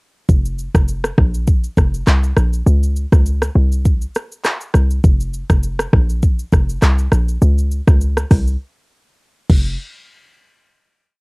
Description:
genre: afrobeats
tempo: 101 BPM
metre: 4/4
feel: swing 55% on 16ths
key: unclear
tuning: A4 = 444 Hz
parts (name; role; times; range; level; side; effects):
- short 808-style bass; bass; 0.3-9.8 s; F1 to Db2; -15 LUFS; equal; none
- afro-pop drum kit; drums; 0.3-9.6 s; crash cymbal, handclaps, hi-hat, kick drum, rim click, shaker; -15 LUFS; equal; cassette tape
room: little or no reverb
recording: home recording on cassette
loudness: -13 LUFS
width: side -34 dB against mid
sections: 0.3-9.8 chorus; 9.8-11.2 final hit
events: break 8.6-9.8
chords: none

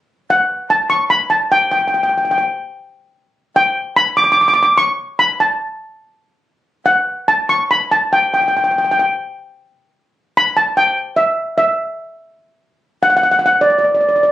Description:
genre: calypso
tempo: 146 BPM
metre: 4/4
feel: swing 53% on 16ths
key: unclear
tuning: A4 = 440 Hz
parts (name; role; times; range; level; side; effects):
- steel pan; solo; 0.3-14.3 s; D5 to D6; -12 LUFS; equal; none
room: moderate studio reverb, RT60 0.6 s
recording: recorded on a phone in the room, club reverb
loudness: -13 LUFS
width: side -13 dB against mid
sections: 0.0-13.0 A section; 13.0-14.3 B section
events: none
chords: none

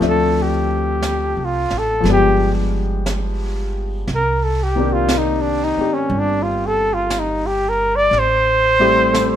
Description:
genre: jazz ballad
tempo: 59 BPM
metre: 4/4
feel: swing 68% on 8ths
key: unclear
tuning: A4 = 440 Hz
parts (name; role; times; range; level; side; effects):
- warm grand piano; accompaniment; 0.0-9.4 s; Eb3 to E5; -21 LUFS; left 4 dB; none
- upright bass; bass; 0.0-9.4 s; G1 to D2; -22 LUFS; right 1 dB; none
- jazz brush drum kit; drums; 0.0-9.4 s; brushed snare drum, hi-hat, snare drum; -28 LUFS; right 2 dB; none
- breathy trumpet; melody; 0.1-9.4 s; C#4 to D5; -17 LUFS; equal; none
room: moderate studio reverb, RT60 1.0 s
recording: minimal, uncompressed stereo recording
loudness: -15 LUFS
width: side -10 dB against mid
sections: 0.0-9.4 A section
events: trumpet solo 0.0-9.4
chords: 0.0 Dm7; 2.1 G7b9; 4.1 Cm9; 8.1 Am7

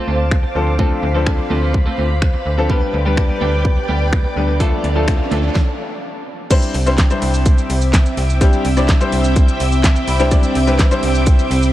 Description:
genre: dance-pop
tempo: 126 BPM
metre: 4/4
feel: straight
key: unclear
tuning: A4 = 440 Hz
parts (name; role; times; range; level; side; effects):
- string machine, full ensemble; sustained chords; 0.0-11.7 s; C4 to D6; -22 LUFS; equal; ensemble chorus, sidechain pumping
- twelve-string electric guitar; riff; 0.0-5.6 s; G3 to A4; -27 LUFS; right 4 dB; wide subtle chorus
- slap-like FM bass; bass; 0.1-11.7 s; C2 to D2; -18 LUFS; equal; sidechain pumping
- pop drum kit; drums; 0.3-11.7 s; crash cymbal, finger snaps, handclaps, hi-hat, kick drum, shaker, snare drum; -16 LUFS; equal; none
- clear concert grand piano; accompaniment; 0.6-11.5 s; F3 to B5; -22 LUFS; left 2 dB; none
- riser; sound effects; 3.8-5.6 s; none; -32 LUFS; right 1 dB; none
room: light reverb, digital ambience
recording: none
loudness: -13 LUFS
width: side -14 dB against mid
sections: 0.0-6.5 A section; 6.5-11.7 B section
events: riser 3.8-6.5; stop 5.6-6.5; grand piano fill 9.6-10.3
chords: 0.0 Dm7; 2.7 G/D; 4.6 Dm; 6.5 Cadd9

